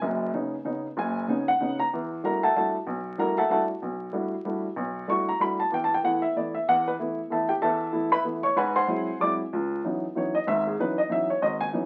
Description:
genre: jazz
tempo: 190 BPM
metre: 3/4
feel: swing 61% on 8ths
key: unclear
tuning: A4 = 440 Hz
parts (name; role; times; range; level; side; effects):
- warm upright piano; solo; 0.0-11.9 s; F#1 to D6; -26 LUFS; equal; none
room: wet studio reverb, RT60 0.6 s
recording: very old 78 rpm record, vinyl crackle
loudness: -26 LUFS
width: mono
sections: 0.0-1.9 A section; 1.9-9.5 A section; 9.5-11.9 A section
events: none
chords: 0.0 Badd9; 1.9 Em11; 5.7 Asus2/E; 8.6 G#7alt; 9.5 C#m11

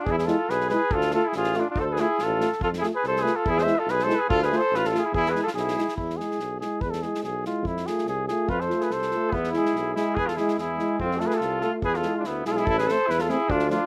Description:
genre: balkan folk, Balkan brass band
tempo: 143 BPM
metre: 2/4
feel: swing 53% on 16ths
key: E phrygian dominant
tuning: A4 = 441 Hz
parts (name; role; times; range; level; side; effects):
- warm flugelhorn; melody; 0.0-13.9 s; E4 to E5; -29 LUFS; equal; none
- warm trumpet; second line; 0.0-6.0, 8.5-13.9 s; B3 to C5; -30 LUFS; equal; slapback echo
- warm tuba; bass; 0.1-13.7 s; A1 to F2; -32 LUFS; equal; none
- unplugged drum kit; percussion; 0.1-13.8 s; kick drum, snare drum; -37 LUFS; equal; none
- mellow euphonium; accompaniment; 0.3-13.8 s; A3 to F4; -33 LUFS; equal; slapback echo
- warm trombone; accompaniment; 0.3-13.8 s; F3 to A3; -34 LUFS; equal; none
room: little or no reverb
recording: recorded outdoors, with no room sound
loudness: -25 LUFS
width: mono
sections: 0.0-6.0 A section; 6.0-12.7 B section; 12.7-13.9 C section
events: speeding up 0.0-13.9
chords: 0.1 E; 0.9 Dm; 2.6 F; 3.4 E; 4.3 Dm; 5.1 E; 7.7 F; 9.3 E; 11.0 F; 11.8 E; 12.7 Am

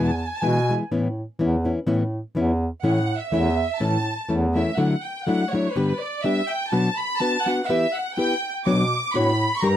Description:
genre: mexican folk, mariachi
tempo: 124 BPM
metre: 2/4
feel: swing 54% on 8ths, rubato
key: A major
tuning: A4 = 440 Hz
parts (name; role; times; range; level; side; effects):
- clear symphonic violin section; melody; 0.0-0.7, 2.8-9.8 s; B4 to D6; -25 LUFS; right 2 dB; none
- nylon-string guitar; accompaniment; 0.0-9.8 s; G2 to C#5; -22 LUFS; left 2 dB; none
- mellow bass clarinet; bass; 0.0-4.6, 8.7-9.8 s; E2 to B2; -24 LUFS; right 1 dB; none
room: little or no reverb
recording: dry, close 1970s-style studio recording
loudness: -20 LUFS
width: side -11 dB against mid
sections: 0.0-4.8 A section; 4.8-9.8 B section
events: none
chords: 0.0 E; 0.9 Aadd9; 2.8 A; 4.8 Dadd9; 5.8 G; 6.7 Bm; 7.7 Em; 8.7 Bmadd9

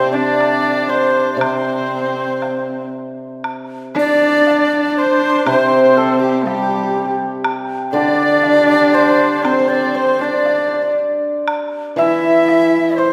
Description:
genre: chinese traditional, Chinese chamber ensemble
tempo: 60 BPM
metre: 2/4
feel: rubato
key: C gong mode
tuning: A4 = 440 Hz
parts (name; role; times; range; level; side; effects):
- bright reedy xiao; melody; 0.0-13.1 s; G4 to E5; -21 LUFS; equal; none
- breathy large dizi; second line; 0.0-13.1 s; G4 to E5; -22 LUFS; equal; none
- hammered dulcimer; second line; 0.0-13.1 s; G4 to E5; -23 LUFS; equal; none
- rich horsehead fiddle; second line; 0.0-13.1 s; G3 to E4; -21 LUFS; equal; none
- hammered dulcimer; accompaniment; 0.0-13.1 s; C3 to E3; -24 LUFS; equal; none
- woodblock; percussion; 0.4-12.7 s; none; -28 LUFS; equal; none
room: wet scoring stage reverb, RT60 2.1 s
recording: recorded in a church or concert hall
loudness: -15 LUFS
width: mono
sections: 0.0-3.5 A section; 3.5-13.1 B section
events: none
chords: none

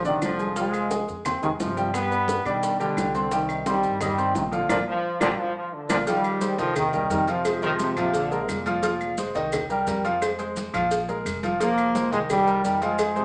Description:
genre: latin, salsa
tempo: 174 BPM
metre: 4/4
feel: straight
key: unclear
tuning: A4 = 440 Hz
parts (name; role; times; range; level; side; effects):
- bright trombone section; melody; 0.0-8.3, 11.6-13.2 s; Bb2 to B3; -27 LUFS; equal; none
- clear grand piano; accompaniment; 0.0-13.2 s; D3 to Eb6; -29 LUFS; equal; none
- upright bass; bass; 0.0-13.2 s; F1 to B2; -40 LUFS; equal; none
- congas; percussion; 0.0-13.2 s; none; -37 LUFS; equal; none
- maracas; percussion; 0.0-13.2 s; none; -44 LUFS; equal; none
- bongos and cowbell; percussion; 0.2-13.2 s; none; -34 LUFS; equal; none
- claves; percussion; 0.2-13.2 s; none; -38 LUFS; equal; none
- bright trombone section; second line; 4.9-9.2, 13.2 s; Bb2 to G3; -31 LUFS; equal; none
room: wet studio reverb, RT60 0.8 s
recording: nothing above 10.3 kHz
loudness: -25 LUFS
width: mono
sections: 0.0-6.1 A section; 6.1-13.2 B section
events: band accent 4.7-6.1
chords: 0.0 Bb7; 0.6 Fm; 1.9 G; 3.3 Cm; 4.7 Bb; 6.1 Fm7; 6.8 Cm7; 7.5 Fm; 8.1 Bb5; 8.8 Fm7; 9.5 Cm7; 10.2 Fm; 10.9 Bb5; 11.6 Fm7; 12.3 Cm7

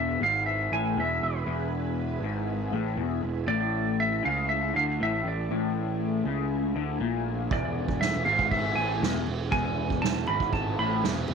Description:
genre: psychedelic rock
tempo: 119 BPM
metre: 4/4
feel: straight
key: E major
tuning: A4 = 441 Hz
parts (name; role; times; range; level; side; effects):
- clean lap steel guitar; melody; 0.0-11.0 s; B4 to B5; -28 LUFS; right 2 dB; slapback echo
- ensemble organ-string; sustained chords; 0.0-11.3 s; A3 to B4; -38 LUFS; right 13 dB; ensemble chorus
- electric guitar through a small old amp; riff; 0.0-11.3 s; E2 to D3; -31 LUFS; left 12 dB; phaser
- fuzz picked electric bass; bass; 0.0-11.3 s; E1 to D2; -31 LUFS; right 2 dB; overdrive
- soft-mallet drum kit; drums; 7.5-11.3 s; kick drum, ride cymbal, snare drum; -30 LUFS; right 6 dB; none
- congas; percussion; 8.1-11.3 s; none; -41 LUFS; left 9 dB; none
room: light reverb, small room ambience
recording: 1960s-style stereo with parts hard left and right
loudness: -25 LUFS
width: side -6 dB against mid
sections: 0.0-11.3 A section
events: none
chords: 0.0 E; 3.5 A5; 7.5 E

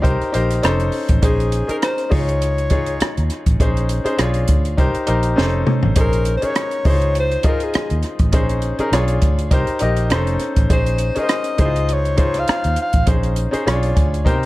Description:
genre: lush 1970s-style soul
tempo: 101 BPM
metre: 4/4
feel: swing 54% on 16ths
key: Bb dorian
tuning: A4 = 439 Hz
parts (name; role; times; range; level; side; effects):
- bright concert grand piano; accompaniment; 0.0-14.5 s; Db4 to G#5; -22 LUFS; left 1 dB; none
- vintage muted fingered electric bass; bass; 0.0-14.5 s; F1 to C3; -20 LUFS; equal; none
- compact cocktail drum kit; drums; 0.0-14.5 s; hi-hat, kick drum, rim click, snare drum, toms; -19 LUFS; equal; none
- warm alto saxophone; melody; 1.2-13.1 s; Ab4 to F5; -22 LUFS; left 1 dB; none
room: light reverb, studio reverb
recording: dark, warm production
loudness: -15 LUFS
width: side -18 dB against mid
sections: 0.0-14.5 A section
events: drum fill 5.4-6.0; grand piano fill 13.7-14.5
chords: 0.0 Cm7; 0.6 F7b13; 1.2 Bbm11; 2.1 Dbadd9; 3.6 Bbm11; 4.2 Bdim7; 4.8 Cm7; 5.4 F7b13; 6.0 Bbm11; 6.9 Dbmaj9; 8.3 Bbm11; 8.9 Bdim7; 9.5 Cm7; 10.1 F7b13; 10.7 Bbm11; 11.6 Dbmaj9; 13.1 Bbm11; 13.7 Bdim7

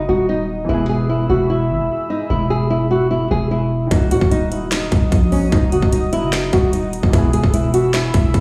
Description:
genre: hip hop, trap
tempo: 149 BPM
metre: 4/4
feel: half-time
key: Eb phrygian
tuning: A4 = 440 Hz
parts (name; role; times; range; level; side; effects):
- nylon-string guitar; melody; 0.0-8.4 s; Db4 to G#4; -22 LUFS; equal; low-pass filter, tape echo
- dark concert grand piano; accompaniment; 0.0-8.4 s; Eb3 to G#4; -31 LUFS; equal; low-pass filter
- dark analog pad; sustained chords; 0.0-8.4 s; Gb4 to E6; -30 LUFS; equal; chorus
- growling 808-style bass; bass; 0.0-8.4 s; Eb1 to Bb2; -22 LUFS; equal; none
- trap drum kit; drums; 3.9-8.4 s; finger snaps, hi-hat, kick drum, snare drum; -20 LUFS; equal; none
room: light reverb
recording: played on a big sound system in a bare room, stone room reverb, small room ambience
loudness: -17 LUFS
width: mono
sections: 0.0-8.4 A section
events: none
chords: 0.0 Ebm; 0.7 E; 3.9 Ebm; 7.1 E

